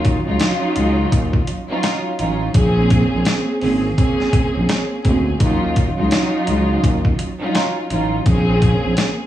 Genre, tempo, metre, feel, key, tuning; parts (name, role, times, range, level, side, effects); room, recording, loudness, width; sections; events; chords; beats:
hip hop, boom-bap hip-hop; 84 BPM; 4/4; swing 62% on 16ths; Eb minor; A4 = 440 Hz
warm studio string section; accompaniment; 0.0-9.3 s; Gb3 to Ab4; -19 LUFS; right 1 dB; cassette tape, high-pass filter, low-pass filter
growling FM bass; bass; 0.0-9.0 s; Ab1 to Eb2; -18 LUFS; equal
boom bap sampler-style drum kit; drums; 0.0-9.2 s; hi-hat, kick drum, snare drum; -18 LUFS; equal; vintage 12-bit sampler grit
light reverb; vinyl crackle, studio reverb, faint mains hum; -15 LUFS; side -12 dB against mid
0.0-9.3 A section
0.0 Ebm9; 2.5 Bbm9; 5.4 Ebm9; 8.3 Bbm9
0.40 1.12 1.83 | 2.55 3.26 3.98 4.69 | 5.40 6.12 6.83 7.55 | 8.26 8.97